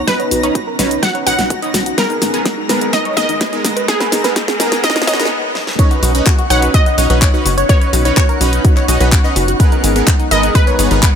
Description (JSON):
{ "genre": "progressive house", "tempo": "126 BPM", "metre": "4/4", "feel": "straight", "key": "B major", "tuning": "A4 = 440 Hz", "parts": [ { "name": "wide unison pluck", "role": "melody", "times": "0.0-11.2 s", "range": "G#4 to F#5", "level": "-19 LUFS", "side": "equal", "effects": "sidechain pumping, dub echo" }, { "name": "evolving wavetable pad", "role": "sustained chords", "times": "0.0-11.2 s", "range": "G#3 to A#5", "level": "-24 LUFS", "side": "equal", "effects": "chorus, built-in reverb, sidechain pumping" }, { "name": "tight sequenced synth", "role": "arpeggios", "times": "0.0-11.1 s", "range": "D#4 to D#5", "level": "-22 LUFS", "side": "left 1 dB", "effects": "chorus, sidechain pumping, dub echo" }, { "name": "tight sequencer bass", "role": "bass", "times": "0.0-11.1 s", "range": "F#1 to B1", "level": "-17 LUFS", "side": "equal", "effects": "sidechain pumping" }, { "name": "riser and swell", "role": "sound effects", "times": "1.2-5.8 s", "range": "none", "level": "-28 LUFS", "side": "equal", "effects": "none" }, { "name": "twinkling granular texture", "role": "texture", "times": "0.0-11.2 s", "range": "F#5 to A#6", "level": "-28 LUFS", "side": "left 1 dB", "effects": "built-in reverb, sidechain pumping" }, { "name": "supersaw stab", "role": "stabs", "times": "0.1-11.0 s", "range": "B3 to D#5", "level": "-20 LUFS", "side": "right 2 dB", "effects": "cassette tape, sidechain pumping, low-pass filter, dub echo" }, { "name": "electronic kick drum", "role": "drums", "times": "0.1-11.1 s", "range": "none", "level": "-13 LUFS", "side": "equal", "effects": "high-pass filter on kick" }, { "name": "pop drum kit", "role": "drums", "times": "0.1-11.1 s", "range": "handclaps, hi-hat, shaker, snare drum", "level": "-18 LUFS", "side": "left 1 dB", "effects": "none" } ], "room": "light reverb", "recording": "high-pass filter", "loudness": "-11 LUFS", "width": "side -8 dB against mid", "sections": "0.0-5.8 A section; 5.8-11.2 B section", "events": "build-up 0.0-5.8; drum fill 0.0-5.3, 5.6; filter sweep on synth arpeggio sound 0.0-5.8; filter sweep on supersaw synth 0.0-5.8; filter sweep on ambient pad 0.0-5.8; riser 1.2-5.3; swell 4.8-5.8; break 5.3-5.8; drop 5.8-11.2", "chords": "0.0 Badd9; 2.0 G#madd9; 5.8 Badd9; 9.6 G#madd9", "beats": "| 0.07 0.55 1.03 1.50 | 1.98 2.46 2.93 3.41 | 3.88 4.36 4.84 5.31 | 5.79 6.26 6.74 7.22 | 7.69 8.17 8.65 9.12 | 9.60 10.07 10.55 11.03" }